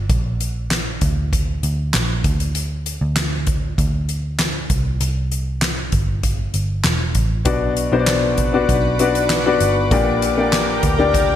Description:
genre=piano-driven pop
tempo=98 BPM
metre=4/4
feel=straight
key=unclear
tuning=A4 = 440 Hz
part: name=vintage muted picked electric bass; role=bass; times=0.0-11.4 s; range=E1 to D2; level=-21 LUFS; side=right 1 dB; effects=none
part: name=soft-mallet drum kit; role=drums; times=0.1-11.3 s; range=handclaps, hi-hat, kick drum, snare drum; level=-21 LUFS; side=equal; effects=none
part: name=warm upright piano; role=accompaniment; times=7.4-11.4 s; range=Bb2 to D5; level=-17 LUFS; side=left 4 dB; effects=none
part: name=shimmering ambient pad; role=sustained chords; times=8.2-11.4 s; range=Bb4 to D6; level=-24 LUFS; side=right 1 dB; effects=chorus, built-in reverb
room=light reverb, small room ambience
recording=none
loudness=-16 LUFS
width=side -11 dB against mid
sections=0.0-11.4 A section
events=none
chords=0.1 Bb; 2.2 N.C.; 4.7 C5; 7.5 Bm; 9.9 Gm/Bb

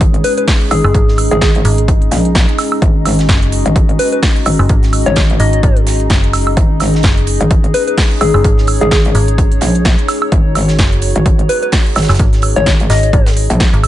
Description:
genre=bass house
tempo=128 BPM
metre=4/4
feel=swing 57% on 16ths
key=unclear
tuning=A4 = 441 Hz
part: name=dark analog pad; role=sustained chords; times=0.0-13.9 s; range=G#3 to G#4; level=-22 LUFS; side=equal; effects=lush chorus, sidechain pumping
part: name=metallic wobble bass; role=bass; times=0.0-13.7 s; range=G#1 to A#1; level=-14 LUFS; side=equal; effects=chorus, overdrive, sidechain pumping
part: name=big-room dance drum kit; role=drums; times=0.0-13.9 s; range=hi-hat, snare drum, woodblock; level=-18 LUFS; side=right 2 dB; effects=none
part: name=crisp fusion drum kit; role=drums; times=0.0-13.9 s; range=hi-hat, snare drum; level=-27 LUFS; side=right 3 dB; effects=high-pass filter on hats, high-pass filter on snare, high-pass filter on room
part: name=electronic kick drum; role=drums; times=0.0-13.7 s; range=none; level=-12 LUFS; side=equal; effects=none
part: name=warbly tape-like pad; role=texture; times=0.0-13.9 s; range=D#4 to D#5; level=-22 LUFS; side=left 1 dB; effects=chorus, built-in reverb, sidechain pumping
part: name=soft struck synth lead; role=melody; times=0.2-13.3 s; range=G#4 to D#5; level=-17 LUFS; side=left 2 dB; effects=chorus, tape echo
part: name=metallic FM bass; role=bass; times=0.8-13.9 s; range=F#1 to G#1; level=-13 LUFS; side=equal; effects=sidechain pumping
room=little or no reverb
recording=nothing above 10.9 kHz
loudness=-9 LUFS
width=side -13 dB against mid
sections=0.0-13.9 A section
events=none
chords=0.0 G#5

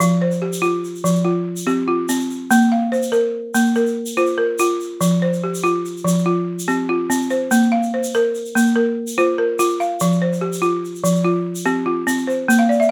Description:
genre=west african traditional, West African string and xylophone music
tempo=96 BPM (dotted quarters)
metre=12/8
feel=straight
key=unclear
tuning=A4 = 439 Hz
part: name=balafon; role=arpeggios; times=0.0-12.9 s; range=F3 to F5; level=-19 LUFS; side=equal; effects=none
part: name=tube shaker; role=percussion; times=0.0-12.9 s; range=none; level=-32 LUFS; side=equal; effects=none
room=light reverb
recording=close, detailed microphones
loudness=-19 LUFS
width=mono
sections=0.0-12.9 A section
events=balafon fill 12.6-12.9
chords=0.0 F5; 2.5 Bb5; 5.0 F5; 7.5 Bb5; 10.0 F5

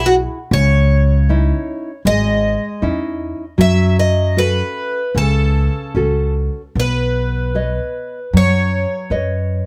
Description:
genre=fado-style ballad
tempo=77 BPM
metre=4/4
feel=rubato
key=C# minor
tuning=A4 = 440 Hz
part: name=picked twelve-string acoustic guitar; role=melody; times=0.0-9.7 s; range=F#4 to E5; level=-22 LUFS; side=equal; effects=none
part: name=nylon-string guitar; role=accompaniment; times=0.0-9.7 s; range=C#3 to D#5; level=-23 LUFS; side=equal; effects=none
part: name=upright bass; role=bass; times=0.0-9.6 s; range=G#1 to F#2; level=-18 LUFS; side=equal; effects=none
room=light reverb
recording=none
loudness=-17 LUFS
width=mono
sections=0.0-9.7 A section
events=none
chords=0.0 Eadd9; 0.5 C#madd9; 3.6 F#m; 6.8 Badd9

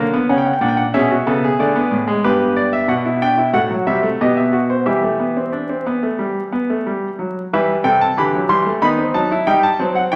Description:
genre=classical, baroque-style 4-part fugue for grand piano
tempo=92 BPM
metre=4/4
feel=straight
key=E minor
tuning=A4 = 439 Hz
part: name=clear concert grand piano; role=solo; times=0.0-10.2 s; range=G2 to C6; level=-17 LUFS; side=equal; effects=none
room=wet recital hall reverb, RT60 1.4 s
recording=vinyl crackle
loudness=-17 LUFS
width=mono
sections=0.0-7.5 A section; 7.5-10.2 B section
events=none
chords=0.0 F#; 0.9 Bm; 2.2 Em/G; 3.5 F#m7b5/A; 4.2 B; 4.9 Em; 8.8 B7/D#

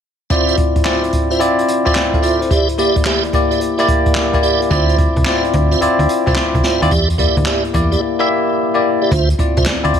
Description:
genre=R&B, new jack swing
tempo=109 BPM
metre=4/4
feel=swing 66% on 16ths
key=D minor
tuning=A4 = 442 Hz
part: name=bell-like tine electric piano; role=accompaniment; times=0.3-10.0 s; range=Bb3 to F5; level=-16 LUFS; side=left 2 dB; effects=wide subtle chorus
part: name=tonewheel organ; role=stabs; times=0.3-9.7 s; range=F4 to E5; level=-20 LUFS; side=right 4 dB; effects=chorus vibrato, slow rotary speaker, ping-pong delay
part: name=jazz brush drum kit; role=drums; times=0.3-10.0 s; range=handclaps, hi-hat, kick drum, snare drum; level=-18 LUFS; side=equal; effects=gated reverb
part: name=slap-like FM bass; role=bass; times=4.7-9.9 s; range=C2 to E2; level=-17 LUFS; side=equal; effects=none
room=light reverb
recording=none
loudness=-13 LUFS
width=side -8 dB against mid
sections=0.3-9.1 A section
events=none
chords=0.3 Dm9; 2.5 Em7b5; 4.7 Dm9; 6.9 Em7b5; 9.1 Dm9

